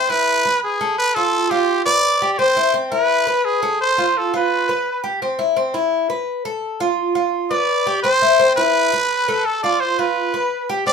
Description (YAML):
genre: latin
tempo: 170 BPM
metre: 4/4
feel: straight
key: unclear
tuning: A4 = 439 Hz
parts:
  - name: growling trumpet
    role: melody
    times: 0.0-5.0, 7.5-10.9 s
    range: G4 to D5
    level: -17 LUFS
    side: right 1 dB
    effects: none
  - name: Cuban tres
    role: arpeggios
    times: 0.0-10.9 s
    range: C4 to B4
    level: -19 LUFS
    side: left 1 dB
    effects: none
room: wet studio reverb, RT60 0.5 s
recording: band playing live in one room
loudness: -16 LUFS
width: side -6 dB against mid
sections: 0.0-10.9 A section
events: none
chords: 0.3 E; 1.0 Fadd9; 1.7 G7; 2.4 Cmaj7; 3.1 E; 3.8 F; 4.5 G7; 5.2 C; 5.9 E5; 6.6 F; 7.3 G7; 8.0 Cmaj7; 8.8 E5; 9.5 F6; 10.2 G7